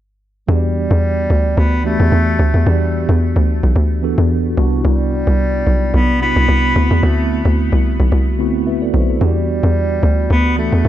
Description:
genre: amapiano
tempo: 110 BPM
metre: 4/4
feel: swing 55% on 16ths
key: E minor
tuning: A4 = 440 Hz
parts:
  - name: mellow bass clarinet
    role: melody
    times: 0.5-10.9 s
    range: G3 to B3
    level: -20 LUFS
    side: right 1 dB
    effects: diffuse ambient delay
  - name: mellow tine electric piano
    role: accompaniment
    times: 0.5-10.9 s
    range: C3 to E5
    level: -20 LUFS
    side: right 1 dB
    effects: medium stereo tremolo
  - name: hollow log drum bass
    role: bass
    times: 0.5-10.9 s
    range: B1 to E2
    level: -14 LUFS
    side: equal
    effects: none
room: light reverb, small room ambience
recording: none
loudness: -13 LUFS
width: side -12 dB against mid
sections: 0.5-10.9 A section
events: drop 0.5-10.9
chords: 0.5 Em7; 4.6 Cmaj9#11; 6.8 D13; 9.2 Em7

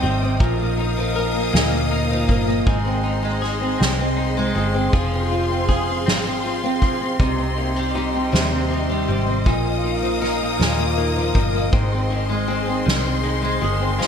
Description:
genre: six-eight pop ballad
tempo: 53 BPM (dotted quarters)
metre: 6/8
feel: straight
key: unclear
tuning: A4 = 439 Hz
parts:
  - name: flamenco guitar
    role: accompaniment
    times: 0.0-14.1 s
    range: Ab2 to Bb4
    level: -23 LUFS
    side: equal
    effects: double-tracked left and right
  - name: warm symphonic string section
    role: sustained chords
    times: 0.0-14.1 s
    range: G4 to Eb6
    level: -26 LUFS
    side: left 2 dB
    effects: none
  - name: direct-recorded clean electric guitar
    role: arpeggios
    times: 0.0-14.1 s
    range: Eb3 to Bb4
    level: -29 LUFS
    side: left 4 dB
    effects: wide subtle chorus
  - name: vintage muted fingered electric bass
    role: bass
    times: 0.0-14.0 s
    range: F1 to Eb2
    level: -24 LUFS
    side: equal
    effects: none
  - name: soft-mallet drum kit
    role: drums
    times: 0.0-14.1 s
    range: kick drum, ride cymbal, snare drum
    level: -24 LUFS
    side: equal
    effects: gated reverb
room: moderate plate reverb, RT60 3.5 s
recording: bright 1980s-style digital production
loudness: -18 LUFS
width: side -7 dB against mid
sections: 0.0-14.1 A section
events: none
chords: 0.4 Bbsus4; 2.7 Ab; 4.9 Fm; 7.2 Cm; 9.5 Bbsus4; 11.7 Ab

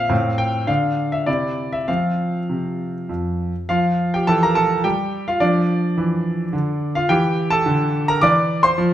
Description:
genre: classical-period piano sonatina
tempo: 98-109 BPM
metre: 3/4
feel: rubato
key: F major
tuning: A4 = 440 Hz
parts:
  - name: clear concert grand piano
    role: solo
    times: 0.0-8.9 s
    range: F2 to D6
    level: -17 LUFS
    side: equal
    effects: none
room: moderate recital hall reverb, RT60 1.5 s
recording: none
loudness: -17 LUFS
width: side -12 dB against mid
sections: 0.0-3.7 A section; 3.7-8.9 B section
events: none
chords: 0.1 F/A; 0.7 N.C.; 1.3 C; 1.9 F5; 3.7 F; 5.4 Dmadd9; 7.1 C7

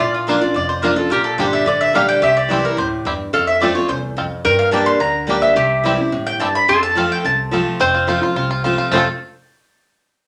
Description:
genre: bluegrass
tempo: 215 BPM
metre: 4/4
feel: straight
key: F major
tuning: A4 = 440 Hz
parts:
  - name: mandolin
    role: melody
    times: 0.0-9.0 s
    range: F4 to C6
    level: -20 LUFS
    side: equal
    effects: none
  - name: lap resonator guitar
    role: second line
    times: 0.0-9.1 s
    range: F4 to C5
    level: -24 LUFS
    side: equal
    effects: none
  - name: picked steel-string acoustic guitar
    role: accompaniment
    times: 0.0-9.0 s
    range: E2 to G4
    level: -22 LUFS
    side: equal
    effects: none
  - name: upright bass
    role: bass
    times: 0.0-9.0 s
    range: F1 to G2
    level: -30 LUFS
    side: equal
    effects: none
  - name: bluegrass banjo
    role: melody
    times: 0.3-9.1 s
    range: A3 to A4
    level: -24 LUFS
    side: equal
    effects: none
room: wet studio reverb, RT60 0.5 s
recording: none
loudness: -17 LUFS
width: mono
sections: 0.0-7.8 A section; 7.8-8.9 B section; 8.9-10.0 C section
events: none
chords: 0.0 Bb; 1.1 Gm; 2.2 C; 3.3 F; 4.5 Gm; 5.6 C; 6.7 F

